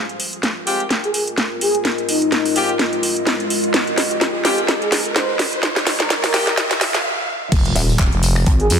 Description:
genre	bass house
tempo	127 BPM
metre	4/4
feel	swing 57% on 16ths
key	F minor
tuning	A4 = 440 Hz
part	deep dark ambient pad	sustained chords	0.0-8.8 s	Ab3 to C5	-34 LUFS	right 2 dB	chorus, built-in reverb, sidechain pumping
part	riser and impact	sound effects	0.0-8.8 s	none	-27 LUFS	right 1 dB	none
part	warbly tape-like pad	texture	0.5-7.0 s	F4 to Eb5	-25 LUFS	left 1 dB	chorus, built-in reverb, sidechain pumping
part	garage drum kit	drums	0.1-8.8 s	crash cymbal, finger snaps, handclaps, hi-hat, snare drum, tambourine	-19 LUFS	equal	small room ambience
part	warm horn section	stabs	0.7-6.5 s	Ab3 to G4	-24 LUFS	left 2 dB	sidechain pumping, low-pass filter, digital delay
part	breathy flute-like synth lead	melody	1.0-8.8 s	Eb4 to C5	-22 LUFS	left 1 dB	ensemble chorus, cassette tape, digital delay
part	growling FM bass	bass	7.5-8.8 s	F1 to F2	-16 LUFS	equal	tube saturation, sidechain pumping
part	electronic kick drum	drums	7.5-8.6 s	none	-16 LUFS	equal	small room ambience
part	jazz brush drum kit	drums	7.5-8.8 s	hi-hat, snare drum	-33 LUFS	right 4 dB	none
part	pulsing pluck wobble bass	bass	7.8-8.7 s	Eb1 to Ab1	-18 LUFS	equal	distortion, chorus, tube saturation, sidechain pumping
room	moderate lush hall reverb, RT60 2.1 s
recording	dense, heavily limited modern master, high-pass filter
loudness	-16 LUFS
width	side -7 dB against mid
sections	0.0-7.5 A section; 7.5-8.8 B section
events	build-up 0.0-7.5; drum fill 0.0-7.0; riser 0.0-7.0; stop 7.0-7.5; drop 7.5-8.8; impact 7.5-8.8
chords	0.0 Fmadd9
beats	0.43 0.91 1.38 | 1.85 2.32 2.80 3.27 | 3.74 4.21 4.68 5.16 | 5.63 6.10 6.58 7.05 | 7.52 7.99 8.46

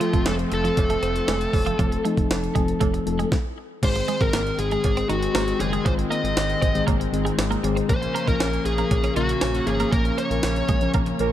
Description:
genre	1980s-style pop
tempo	118 BPM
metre	4/4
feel	straight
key	unclear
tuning	A4 = 435 Hz
part	smooth overdriven lead guitar	melody	0.0-10.9 s	F4 to Eb5	-26 LUFS	equal	ping-pong delay
part	mellow FM electric piano	accompaniment	0.0-11.3 s	Db3 to Bb4	-27 LUFS	left 5 dB	chorus
part	brassy analog pad	sustained chords	0.0-11.3 s	Db3 to Db4	-31 LUFS	right 1 dB	chorus
part	twelve-string electric guitar	riff	0.0-11.1 s	F3 to Eb4	-31 LUFS	right 5 dB	analog chorus, ping-pong delay
part	jungle sampler-style drum kit	drums	0.0-11.3 s	crash cymbal, hi-hat, kick drum, snare drum, tambourine	-25 LUFS	equal	none
part	smooth gliding synth bass	bass	0.1-11.3 s	F1 to Bb1	-28 LUFS	equal	none
part	cowbell	percussion	0.3-11.3 s	none	-39 LUFS	right 7 dB	none
part	analog synth brass	stabs	11.2-11.3 s	F3 to Bb4	-22 LUFS	right 9 dB	chorus
room	light reverb, digital ambience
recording	none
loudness	-20 LUFS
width	side -12 dB against mid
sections	0.0-3.8 A section; 3.8-11.3 B section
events	stop 3.3-3.8; band accent 9.9-11.3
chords	0.0 F; 3.8 Ab; 7.9 Bbm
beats	0.27 0.78 1.28 | 1.79 2.30 2.81 3.32 | 3.83 4.34 4.84 5.35 | 5.86 6.37 6.88 7.39 | 7.89 8.40 8.91 9.42 | 9.93 10.44 10.95

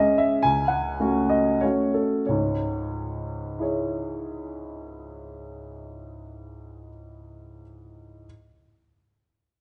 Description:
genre	classical, romantic triple-time dance for piano with dotted rhythms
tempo	87-126 BPM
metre	3/4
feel	rubato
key	C# minor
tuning	A4 = 440 Hz
part	warm baby grand piano	solo	0.0-8.3 s	C#2 to G#5	-26 LUFS	equal	none
room	moderate recital hall reverb, RT60 1.7 s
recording	recorded in a church or concert hall, nothing above 10.8 kHz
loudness	-25 LUFS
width	mono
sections	0.0-2.3 A section; 2.3-6.1 B section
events	slowing down 0.0-2.3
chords	0.4 F#m/C#; 2.3 C#m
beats	| 0.43 0.99 1.63 | 2.28 2.93 3.60 | 4.22 4.87 5.52

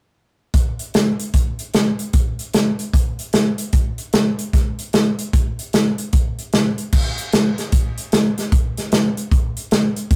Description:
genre	blues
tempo	150 BPM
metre	4/4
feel	swing 63% on 8ths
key	none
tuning	none
part	natural country drum kit	drums	0.5-10.2 s	crash cymbal, hi-hat, kick drum, snare drum	-19 LUFS	equal	none
room	moderate small room reverb, RT60 0.5 s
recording	rough rehearsal-room recording, warm saturation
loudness	-19 LUFS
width	mono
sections	0.5-6.9 A section; 6.9-10.2 B section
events	none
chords	none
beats	| 0.54 0.94 1.34 1.74 | 2.14 2.54 2.94 3.34 | 3.74 4.14 4.54 4.94 | 5.33 5.73 6.13 6.53 | 6.93 7.33 7.73 8.12 | 8.52 8.92 9.32 9.71 | 10.11

